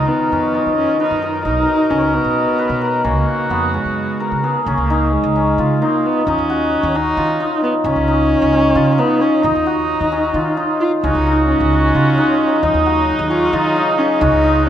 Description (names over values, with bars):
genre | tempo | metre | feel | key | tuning
contemporary instrumental, chamber music in an uneven meter | 264 BPM (eighths) | 7/8 | straight | Db mixolydian | A4 = 440 Hz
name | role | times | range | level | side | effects
dark viola | second line | 0.0-14.7 s | Ab3 to F4 | -20 LUFS | right 2 dB | none
clear woodwind section | sustained chords | 0.0-4.6, 11.0-14.7 s | Cb3 to Bb4 | -24 LUFS | equal | none
hammered dulcimer | arpeggios | 0.0-14.7 s | Cb4 to Cb5 | -16 LUFS | left 1 dB | none
upright bass | bass | 0.0-14.7 s | Cb2 to Eb3 | -21 LUFS | right 2 dB | none
room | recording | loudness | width
moderate concert hall reverb, RT60 2.2 s | close, detailed microphones | -14 LUFS | side -10 dB against mid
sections
0.0-4.7 A section; 4.7-14.7 B section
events
none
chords
0.0 Db13; 1.5 Cbmaj9; 3.1 Db7sus4; 4.7 Db5; 6.3 Ebm7; 7.8 Dbadd9; 9.4 Ebm7; 11.0 Dbsus4; 12.6 Ebm7